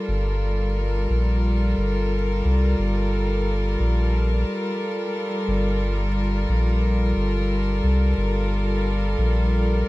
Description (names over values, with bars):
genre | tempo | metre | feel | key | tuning
ambient dub | 89 BPM | 4/4 | swing 60% on 16ths | G minor | A4 = 440 Hz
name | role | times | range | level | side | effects
rich chamber string section | sustained chords | 0.0-9.9 s | G3 to Bb4 | -24 LUFS | equal | none
soft dub sub bass | bass | 0.1-9.8 s | G1 to C2 | -21 LUFS | equal | none
room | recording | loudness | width
studio ambience | vinyl crackle | -20 LUFS | side -19 dB against mid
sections
0.0-9.9 A section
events
none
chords
0.0 Gm9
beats
| 0.09 0.76 1.43 2.11 | 2.78 3.46 4.13 4.80 | 5.48 6.15 6.83 7.50 | 8.18 8.85 9.52